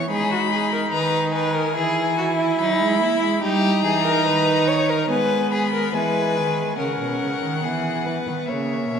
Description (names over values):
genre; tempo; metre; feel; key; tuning
classical, baroque-style fugue for string quartet; 72 BPM; 4/4; straight; C# minor; A4 = 441 Hz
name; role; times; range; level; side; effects
warm violin; melody; 0.0-9.0 s; E5 to B5; -26 LUFS; left 7 dB; none
rich violin; second line; 0.0-9.0 s; D#4 to C#5; -24 LUFS; left 2 dB; none
rich viola; accompaniment; 0.0-9.0 s; G#3 to E4; -24 LUFS; right 2 dB; none
rich cello; bass; 0.0-9.0 s; B2 to A#3; -25 LUFS; right 3 dB; none
room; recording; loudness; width
wet church reverb, RT60 3.0 s; recorded in a church or concert hall; -18 LUFS; side -7 dB against mid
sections
0.0-6.8 A section; 6.8-9.0 B section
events
none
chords
0.1 G#m; 1.8 Emaj7#11; 3.4 D#; 5.1 G#m; 6.8 C#m; 8.5 F#7 (rootless)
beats
| 0.10 0.93 1.75 2.59 | 3.42 4.25 5.10 5.94 | 6.79 7.64 8.48